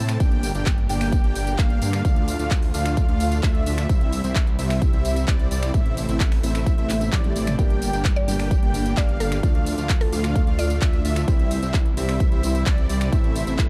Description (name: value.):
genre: EDM, festival progressive house.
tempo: 130 BPM.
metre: 4/4.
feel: straight.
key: D minor.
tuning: A4 = 440 Hz.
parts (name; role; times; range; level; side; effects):
rich studio string section; sustained chords; 0.0-13.7 s; C3 to G4; -36 LUFS; equal; none.
unison lead; arpeggios; 0.0-13.6 s; D5 to A5; -34 LUFS; equal; analog chorus, sidechain pumping, digital delay.
dense compressed supersaw; riff; 0.0-13.6 s; G3 to A5; -31 LUFS; equal; sidechain pumping, digital delay.
detuned saw bass; bass; 0.0-13.7 s; G1 to A2; -28 LUFS; equal; sidechain pumping.
big-room dance drum kit; drums; 0.1-13.7 s; finger snaps, handclaps, hi-hat, tambourine, toms; -33 LUFS; equal; none.
electronic kick drum; drums; 0.2-13.7 s; none; -22 LUFS; equal; none.
swell; sound effects; 7.2-7.6 s; none; -40 LUFS; equal; none.
warm grand piano; accompaniment; 7.6-13.7 s; G2 to G4; -34 LUFS; equal; sidechain pumping, digital delay.
mallet-like synth pluck; melody; 8.2-11.2 s; A4 to D5; -34 LUFS; equal; chorus, digital delay.
room: little or no reverb.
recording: dark, warm production.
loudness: -21 LUFS.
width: mono.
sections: 0.0-13.7 A section.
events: drum fill 6.9-7.6.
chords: 0.2 Gm; 2.0 Dm; 3.9 C; 5.7 Am; 7.6 Gm; 9.4 Dm; 11.3 C; 13.1 Am.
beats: | 0.20 0.66 1.13 1.59 | 2.05 2.51 2.97 3.43 | 3.90 4.36 4.82 5.28 | 5.74 6.20 6.66 7.13 | 7.59 8.05 8.51 8.97 | 9.43 9.89 10.36 10.82 | 11.28 11.74 12.20 12.66 | 13.13 13.59.